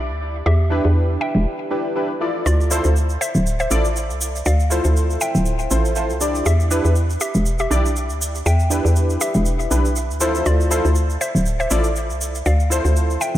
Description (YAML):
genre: deep house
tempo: 120 BPM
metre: 4/4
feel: swing 56% on 16ths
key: D dorian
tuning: A4 = 443 Hz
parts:
  - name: hollow knocking FM bass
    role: bass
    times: 0.0-13.4 s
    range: D1 to E2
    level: -18 LUFS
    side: equal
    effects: none
  - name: mallet-like synth pluck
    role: melody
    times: 0.5-13.4 s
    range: F4 to G5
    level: -26 LUFS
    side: left 1 dB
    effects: chorus, ping-pong delay
  - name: warm analog keys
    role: stabs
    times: 0.7-13.4 s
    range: D4 to D5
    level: -23 LUFS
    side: equal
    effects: chorus, vintage 12-bit sampler grit, analog delay
  - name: cabasa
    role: percussion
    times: 2.5-13.4 s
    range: none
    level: -28 LUFS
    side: right 2 dB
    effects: none
room: light reverb, digital ambience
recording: none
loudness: -16 LUFS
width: side -13 dB against mid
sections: 0.0-13.4 A section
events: break 1.5-2.5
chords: 0.0 Em7; 2.5 Dm9; 6.5 Em7; 10.5 Dm9